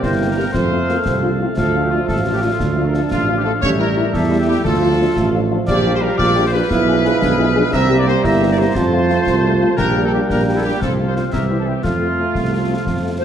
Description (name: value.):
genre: military-style march for wind band.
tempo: 117 BPM (dotted quarters).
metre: 6/8.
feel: straight.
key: F major.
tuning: A4 = 440 Hz.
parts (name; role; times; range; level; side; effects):
clear trumpet section; melody; 0.0-13.2 s; F4 to E5; -22 LUFS; left 1 dB; none.
mellow euphonium; second line; 0.0-13.2 s; A3 to G4; -22 LUFS; right 4 dB; none.
warm woodwind section; second line; 0.0-13.2 s; D4 to Bb5; -24 LUFS; left 2 dB; none.
warm trombone section; sustained chords; 0.0-13.2 s; C3 to C4; -24 LUFS; right 2 dB; none.
mellow tuba; bass; 0.0-13.2 s; G1 to F2; -19 LUFS; right 2 dB; none.
concert snare drum, concert bass drum and clash cymbals; drums; 0.0-13.2 s; none; -26 LUFS; left 2 dB; none.
mellow French horn section; accompaniment; 0.2-13.2 s; F3 to G#4; -24 LUFS; left 5 dB; none.
hollow flute section; second line; 13.2 s; C5; -20 LUFS; left 2 dB; none.
room: moderate scoring stage reverb, RT60 1.8 s.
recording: dark, warm production.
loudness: -14 LUFS.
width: side -9 dB against mid.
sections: 0.0-13.2 A section.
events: none.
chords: 0.0 C7; 0.5 F; 1.6 Dm; 3.6 A7; 4.6 Dm; 5.7 Gm7/Bb; 6.7 Bdim7; 7.7 C7; 8.8 F; 9.8 Gm/Bb; 10.8 F/C; 11.3 C7; 11.8 F.